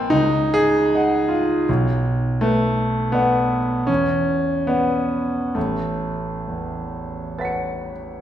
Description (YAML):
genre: classical, impressionist solo piano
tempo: 65-83 BPM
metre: 5/4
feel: rubato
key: A major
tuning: A4 = 439 Hz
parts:
  - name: clear grand piano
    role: solo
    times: 0.0-8.2 s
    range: A1 to C#7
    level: -18 LUFS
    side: equal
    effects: none
room: wet recital hall reverb, RT60 1.4 s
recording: heard from further back in the room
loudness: -18 LUFS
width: side -10 dB against mid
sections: 0.0-8.2 A section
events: none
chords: 0.1 C#sus24; 1.7 Bm7; 3.9 Esus2; 5.6 A69